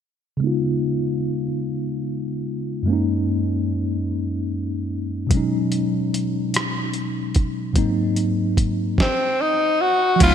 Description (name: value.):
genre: slow six-eight R&B.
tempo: 49 BPM (dotted quarters).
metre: 6/8.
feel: straight.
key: unclear.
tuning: A4 = 440 Hz.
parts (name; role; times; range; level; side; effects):
mellow tine electric piano; accompaniment; 0.4-10.3 s; F#2 to E#4; -21 LUFS; equal; medium stereo tremolo, low-pass filter.
dusty soul sampler-style drum kit; drums; 5.3-10.3 s; crash cymbal, hi-hat, kick drum, rim click, snare drum; -21 LUFS; right 1 dB; gated reverb.
growling tenor saxophone; melody; 9.0-10.3 s; B#3 to F#4; -17 LUFS; left 1 dB; none.
rich studio string section; sustained chords; 10.2-10.3 s; E#4 to B5; -26 LUFS; left 1 dB; none.
deep dub fingered electric bass; bass; 10.2-10.3 s; C#2; -18 LUFS; right 1 dB; none.
room: moderate lush hall reverb, RT60 3.0 s.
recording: bright 1980s-style digital production.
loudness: -20 LUFS.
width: side -8 dB against mid.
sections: 0.4-10.2 A section.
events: filter sweep on tine electric piano 0.4-10.2.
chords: 0.4 C#7; 2.9 F#69; 5.3 B69; 7.8 G#9.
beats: | 0.41 1.64 | 2.86 4.09 | 5.31 6.54 | 7.76 8.99 | 10.21.